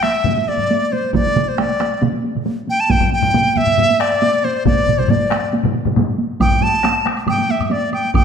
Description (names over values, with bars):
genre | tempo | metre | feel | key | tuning
japanese traditional, taiko drum ensemble | 137 BPM | 4/4 | straight | D suspended pentatonic | A4 = 440 Hz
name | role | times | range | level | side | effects
bright dizi | melody | 0.0-8.2 s | C5 to A5 | -17 LUFS | equal | none
taiko ensemble | percussion | 0.0-8.2 s | none | -21 LUFS | right 2 dB | none
taiko ensemble | percussion | 0.0-7.7 s | none | -21 LUFS | left 3 dB | none
taiko ensemble | percussion | 1.1-8.2 s | none | -22 LUFS | right 4 dB | none
taiko ensemble | percussion | 1.1-8.2 s | none | -19 LUFS | right 1 dB | none
woodblock | percussion | 6.4-8.2 s | none | -27 LUFS | right 4 dB | none
room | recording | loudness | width
wet recital hall reverb, RT60 1.4 s | none | -14 LUFS | side -7 dB against mid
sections
0.0-8.2 A section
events
none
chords
none